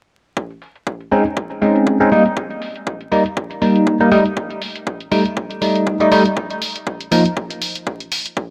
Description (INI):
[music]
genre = deep house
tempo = 120 BPM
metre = 4/4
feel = swing 55% on 16ths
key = unclear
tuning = A4 = 440 Hz
[part]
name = electronic kick drum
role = drums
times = 0.4-8.5 s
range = none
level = -27 LUFS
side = equal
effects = high-pass filter on kick, high-pass filter on room
[part]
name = electronic hi-hat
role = drums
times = 0.5-8.3 s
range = none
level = -27 LUFS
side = equal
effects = low-pass filter on hats, low-pass filter on room
[part]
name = barky tine electric piano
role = stabs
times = 1.1-7.2 s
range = F3 to Eb4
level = -17 LUFS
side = equal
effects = phaser, low-pass filter, delay
[sound]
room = moderate lush hall reverb, RT60 2.5 s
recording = vinyl crackle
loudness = -17 LUFS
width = mono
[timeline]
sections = 0.4-8.5 A section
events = filter sweep on tine electric piano 0.4-8.5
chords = 0.4 Abadd11; 2.1 Gm; 4.1 Gsus2; 6.4 F7sus4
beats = | 0.37 0.87 1.37 1.87 | 2.37 2.87 3.37 3.87 | 4.37 4.87 5.37 5.87 | 6.37 6.87 7.37 7.87 | 8.37